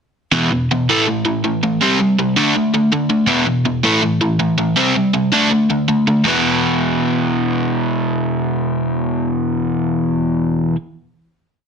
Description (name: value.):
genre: punk.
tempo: 161 BPM.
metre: 4/4.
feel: straight.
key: E minor.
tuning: A4 = 440 Hz.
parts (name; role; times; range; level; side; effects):
overdriven electric guitar; solo; 0.3-10.8 s; E2 to D4; -14 LUFS; equal; none.
room: moderate studio reverb, RT60 0.7 s.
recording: dense, heavily limited modern master.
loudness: -14 LUFS.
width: side -6 dB against mid.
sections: 0.3-6.3 verse; 6.3-9.2 final chord.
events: none.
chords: 0.3 E5; 0.9 A5; 1.8 C5; 2.4 D5; 3.3 E5; 3.8 A5; 4.8 C5; 5.3 D5; 6.3 E5.